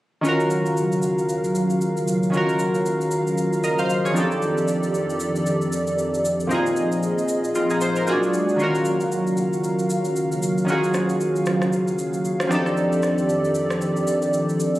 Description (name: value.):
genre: amapiano.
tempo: 115 BPM.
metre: 4/4.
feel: swing 58% on 16ths.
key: Eb dorian.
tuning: A4 = 440 Hz.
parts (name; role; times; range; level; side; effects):
warm analog keys; accompaniment; 0.2-14.8 s; Bb2 to F5; -21 LUFS; equal; chorus.
hollow soft pad; sustained chords; 0.2-14.8 s; Eb2 to F5; -24 LUFS; equal; ensemble chorus.
electronic shaker and rim click; drums; 0.2-14.8 s; none; -34 LUFS; equal; none.
room: light reverb.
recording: recorded on a phone in the room, club reverb, compression.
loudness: -19 LUFS.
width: side -16 dB against mid.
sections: 0.2-14.8 A section.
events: none.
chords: 0.2 Ebm9; 4.2 F13; 6.5 Bb7sus4; 8.1 Bb7b13; 8.6 Ebm9; 12.5 F13.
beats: | 0.25 0.77 1.29 1.81 | 2.33 2.86 3.38 3.90 | 4.42 4.94 5.46 5.99 | 6.51 7.03 7.55 8.07 | 8.60 9.12 9.64 10.16 | 10.68 11.20 11.73 12.25 | 12.77 13.29 13.81 14.34.